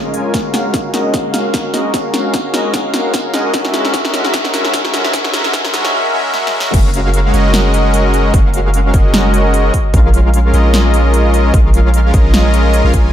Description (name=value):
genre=future bass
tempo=150 BPM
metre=4/4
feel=swing 55% on 16ths, half-time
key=F# major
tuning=A4 = 440 Hz
part: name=soft supersaw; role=riff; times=0.0-13.1 s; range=G#3 to G#5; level=-15 LUFS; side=left 1 dB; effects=sidechain pumping, low-pass filter, tape echo
part: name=long sustained 808-style bass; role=bass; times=0.0-13.1 s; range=F#1 to F#2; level=-12 LUFS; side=equal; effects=sidechain pumping, high-pass filter
part: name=big-room dance drum kit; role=drums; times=0.1-13.0 s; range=crash cymbal, hi-hat, snare drum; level=-18 LUFS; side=equal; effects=overdrive, small room ambience
part: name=electronic kick drum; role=drums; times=0.3-13.0 s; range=none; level=-15 LUFS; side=equal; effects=overdrive, small room ambience
room=moderate plate reverb, RT60 1.4 s, digital ambience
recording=dreamy mix soaked in reverb, high-pass filter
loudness=-11 LUFS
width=side -11 dB against mid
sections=0.0-6.7 A section; 6.7-13.1 B section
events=build-up 0.0-6.7; drum fill 0.0-5.9, 6.3-6.7; filter sweep on supersaw synth 0.0-6.7; filter sweep 0.0-6.7; drop 6.7-13.1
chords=0.3 F#maj9; 3.5 E; 6.7 F#maj9; 9.7 A#m7